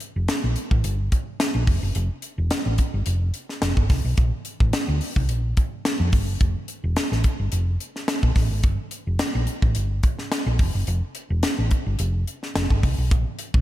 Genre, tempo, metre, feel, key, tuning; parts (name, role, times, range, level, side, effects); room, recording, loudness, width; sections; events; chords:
polished 1980s jazz-funk pop; 108 BPM; 4/4; swing 54% on 16ths; F major; A4 = 440 Hz
crisp fusion drum kit; drums; 0.0-13.6 s; hi-hat, kick drum, snare drum; -22 LUFS; equal
hollow-body short-scale fingered electric bass; bass; 0.2-13.6 s; E1 to F2; -22 LUFS; equal
light reverb; -21 LUFS; side -14 dB against mid
0.0-13.6 A section